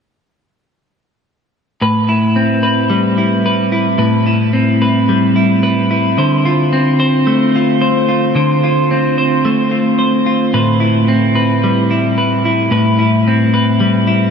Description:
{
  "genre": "dream pop",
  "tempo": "110 BPM",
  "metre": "4/4",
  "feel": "straight",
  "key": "A minor",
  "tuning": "A4 = 441 Hz",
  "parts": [
    { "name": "clean electric guitar", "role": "arpeggios", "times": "1.8-14.3 s", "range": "A2 to C5", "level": "-11 LUFS", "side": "equal", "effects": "lush chorus, diffuse ambient delay" }
  ],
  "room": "wet huge ambient reverb, RT60 7.1 s",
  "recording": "dreamy mix soaked in reverb",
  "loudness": "-11 LUFS",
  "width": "side -6 dB against mid",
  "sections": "1.8-14.3 A section",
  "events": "none",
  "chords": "1.8 Am9; 6.2 Dm7; 10.5 Am9"
}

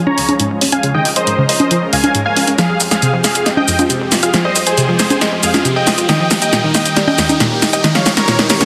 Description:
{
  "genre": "uplifting trance",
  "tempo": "137 BPM",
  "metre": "4/4",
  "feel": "straight",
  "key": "F minor",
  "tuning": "A4 = 441 Hz",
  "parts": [
    { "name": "analog pluck", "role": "arpeggios", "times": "0.0-8.5 s", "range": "Db2 to F4", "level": "-21 LUFS", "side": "equal", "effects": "chorus, delay" },
    { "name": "riser", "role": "sound effects", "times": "0.7-8.7 s", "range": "none", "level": "-28 LUFS", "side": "equal", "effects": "none" },
    { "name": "dense compressed supersaw", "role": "melody", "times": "0.1-8.7 s", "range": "Ab4 to Bb5", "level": "-19 LUFS", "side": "equal", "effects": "low-pass filter, delay" },
    { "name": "analog string pad", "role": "sustained chords", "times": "0.1-8.7 s", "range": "Eb3 to Bb4", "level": "-24 LUFS", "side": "equal", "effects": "ensemble chorus" },
    { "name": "tight sequencer bass", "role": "bass", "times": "0.1-8.7 s", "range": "Eb1 to G2", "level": "-31 LUFS", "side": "equal", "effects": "none" },
    { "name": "punchy analog drum machine", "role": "drums", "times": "0.1-8.7 s", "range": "congas, hi-hat, shaker, snare drum", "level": "-17 LUFS", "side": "equal", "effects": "none" }
  ],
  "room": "moderate digital room reverb, RT60 1.1 s",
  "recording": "dense, heavily limited modern master",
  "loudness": "-14 LUFS",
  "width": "mono",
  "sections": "0.0-8.7 A section",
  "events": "build-up 0.0-8.7; filter sweep on synth arpeggio sound 0.0-8.7; drum fill 2.6-8.7",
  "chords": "0.0 Db; 2.6 Fmadd9; 6.1 Eb"
}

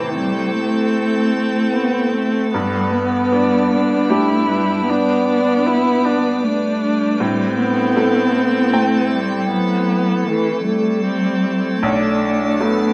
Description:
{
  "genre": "neoclassical piano and strings",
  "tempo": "78 BPM",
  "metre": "3/4",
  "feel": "rubato",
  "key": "A dorian",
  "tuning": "A4 = 440 Hz",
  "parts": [
    { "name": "muted cello", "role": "second line", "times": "0.0-12.9 s", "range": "E3 to B3", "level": "-21 LUFS", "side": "equal", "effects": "none" },
    { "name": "bright upright piano", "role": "accompaniment", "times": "0.0-12.9 s", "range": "B1 to G5", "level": "-26 LUFS", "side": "equal", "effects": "none" },
    { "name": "muted viola", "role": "accompaniment", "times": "0.0-12.9 s", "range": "A3 to E4", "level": "-23 LUFS", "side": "equal", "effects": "none" },
    { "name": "icy glass pad", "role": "sustained chords", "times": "0.0-12.9 s", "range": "F#3 to B4", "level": "-25 LUFS", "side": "equal", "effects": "chorus, built-in reverb" }
  ],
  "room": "moderate recital hall reverb, RT60 1.4 s",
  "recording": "none",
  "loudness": "-17 LUFS",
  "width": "mono",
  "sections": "0.0-12.9 A section",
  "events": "none",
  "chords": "0.0 Am7; 2.5 G; 7.2 Am7; 11.8 Bm7"
}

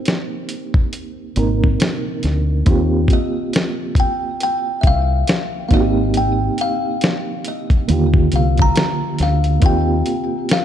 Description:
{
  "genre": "lo-fi hip hop",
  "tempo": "69 BPM",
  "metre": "4/4",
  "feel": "swing 59% on 16ths",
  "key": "Eb major",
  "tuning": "A4 = 441 Hz",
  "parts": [
    { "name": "kalimba", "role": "melody", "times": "0.0-10.6 s", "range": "C5 to Bb5", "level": "-23 LUFS", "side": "left 2 dB", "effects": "low-pass filter, tape echo" },
    { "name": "bright reed electric piano", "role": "accompaniment", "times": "0.0-10.6 s", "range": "D3 to Bb4", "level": "-21 LUFS", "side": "right 3 dB", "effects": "fast tremolo, low-pass filter" },
    { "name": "dusty soul sampler-style drum kit", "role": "drums", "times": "0.1-10.6 s", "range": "hi-hat, kick drum, snare drum", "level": "-17 LUFS", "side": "equal", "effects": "none" },
    { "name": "deep dub fingered electric bass", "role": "bass", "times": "1.4-10.0 s", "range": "Ab1 to Eb2", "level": "-18 LUFS", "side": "equal", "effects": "none" }
  ],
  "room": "light reverb",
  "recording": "dark, warm production",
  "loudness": "-15 LUFS",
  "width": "side -10 dB against mid",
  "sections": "0.0-9.6 A section; 9.6-10.6 B section",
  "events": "none",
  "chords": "0.0 Abmaj7; 2.7 Eb6; 5.7 Abmaj7; 7.9 Ebmaj9; 9.6 Eb6"
}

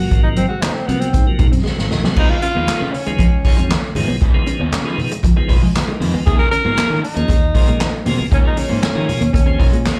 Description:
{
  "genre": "funk",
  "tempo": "117 BPM",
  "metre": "4/4",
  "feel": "straight",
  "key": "unclear",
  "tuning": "A4 = 440 Hz",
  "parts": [
    { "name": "breathy tenor saxophone", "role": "melody", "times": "0.0-10.0 s", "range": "Cb4 to Bb4", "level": "-24 LUFS", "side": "equal", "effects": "slapback echo" },
    { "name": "mellow electric guitar", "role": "riff", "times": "0.0-9.8 s", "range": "F3 to Db4", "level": "-26 LUFS", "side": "equal", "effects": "none" },
    { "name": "tonewheel organ", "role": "stabs", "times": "0.0-10.0 s", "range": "C3 to F4", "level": "-28 LUFS", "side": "equal", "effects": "overdrive, slow rotary speaker, slapback echo" },
    { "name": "fingered electric bass", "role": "bass", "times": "0.0-9.8 s", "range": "Gb1 to Eb3", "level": "-24 LUFS", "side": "equal", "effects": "none" },
    { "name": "swinging big-band drum kit", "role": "drums", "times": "0.1-10.0 s", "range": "crash cymbal, handclaps, hi-hat, kick drum, snare drum", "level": "-19 LUFS", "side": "equal", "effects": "none" },
    { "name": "congas", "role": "percussion", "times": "0.4-10.0 s", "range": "none", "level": "-29 LUFS", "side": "equal", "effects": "none" },
    { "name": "raw garage guitar", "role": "accompaniment", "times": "2.2-9.8 s", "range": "Ab3 to Db5", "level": "-31 LUFS", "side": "equal", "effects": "overdrive, slapback echo" }
  ],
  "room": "light reverb",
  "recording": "live gig heard through the venue's PA, club reverb",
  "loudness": "-16 LUFS",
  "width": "mono",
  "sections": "0.0-2.2 A section; 2.2-10.0 B section",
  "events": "break 0.0-2.2; tenor saxophone solo 0.0-2.2; drum fill 1.7-2.2",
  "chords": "0.0 Ab13; 2.2 Db9; 6.3 Eb9sus4"
}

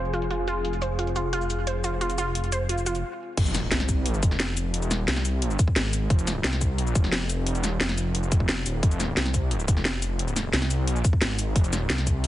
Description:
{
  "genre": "dark technical drum and bass",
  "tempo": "176 BPM",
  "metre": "4/4",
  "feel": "straight",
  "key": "F minor",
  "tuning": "A4 = 440 Hz",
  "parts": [
    { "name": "deep dark ambient pad", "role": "sustained chords", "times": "0.0-3.0 s", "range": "C4 to Ab4", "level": "-34 LUFS", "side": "left 4 dB", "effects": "chorus, built-in reverb, sidechain pumping" },
    { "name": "wide unison pluck", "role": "arpeggios", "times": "0.0-2.9 s", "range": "F4 to C5", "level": "-29 LUFS", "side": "right 2 dB", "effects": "sidechain pumping, digital delay" },
    { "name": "wide detuned saw bass", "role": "bass", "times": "0.0-12.3 s", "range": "Eb1 to C2", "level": "-26 LUFS", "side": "equal", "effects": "chorus, tube saturation, sidechain pumping" },
    { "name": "warbly tape-like pad", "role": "texture", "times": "0.0-3.0 s", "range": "F4 to C6", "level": "-42 LUFS", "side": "right 2 dB", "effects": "none" },
    { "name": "drum and bass drum kit", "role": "drums", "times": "0.1-12.3 s", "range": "cabasa, crash cymbal, hi-hat, snare drum", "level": "-28 LUFS", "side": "left 1 dB", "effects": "none" },
    { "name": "electronic kick drum", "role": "drums", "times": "3.4-12.1 s", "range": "none", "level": "-22 LUFS", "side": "equal", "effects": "none" },
    { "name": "impact", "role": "sound effects", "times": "3.4-4.7 s", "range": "none", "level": "-34 LUFS", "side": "equal", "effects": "none" }
  ],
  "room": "light reverb, digital ambience",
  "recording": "heavily compressed radio sound, low-pass filter, nothing above 10.9 kHz",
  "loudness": "-23 LUFS",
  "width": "side -14 dB against mid",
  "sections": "0.0-3.4 A section; 3.4-12.3 B section",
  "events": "filter sweep 0.0-3.4; stop 3.0-3.4; drop 3.4-12.3; impact 3.4-4.7",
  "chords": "0.0 F5"
}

